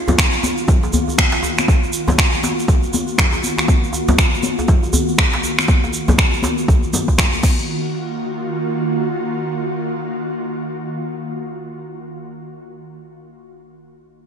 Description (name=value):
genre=afro house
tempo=120 BPM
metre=4/4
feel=swing 60% on 16ths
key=Eb minor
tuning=A4 = 440 Hz
part: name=ethereal airy pad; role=sustained chords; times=0.0-12.0 s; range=Eb3 to Gb4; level=-23 LUFS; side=equal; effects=ensemble chorus, built-in reverb, vintage 12-bit sampler grit, sidechain pumping
part: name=congas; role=percussion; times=0.1-7.6 s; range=none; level=-24 LUFS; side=left 4 dB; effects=none
part: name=djembe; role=percussion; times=0.1-7.4 s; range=none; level=-23 LUFS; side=right 1 dB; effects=none
part: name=tube shaker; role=percussion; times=0.1-7.7 s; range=none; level=-28 LUFS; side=right 5 dB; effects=none
part: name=deep house drum kit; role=drums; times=0.2-7.6 s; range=crash cymbal, finger snaps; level=-20 LUFS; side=equal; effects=overdrive, gated reverb
part: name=electronic kick drum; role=drums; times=0.2-7.6 s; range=none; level=-15 LUFS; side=equal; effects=overdrive
room=moderate lush hall reverb, RT60 2.4 s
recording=bright 1980s-style digital production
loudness=-15 LUFS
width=side -7 dB against mid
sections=0.0-7.7 A section; 7.7-11.7 B section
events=filter sweep on ambient pad 0.0-7.7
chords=0.0 Ebm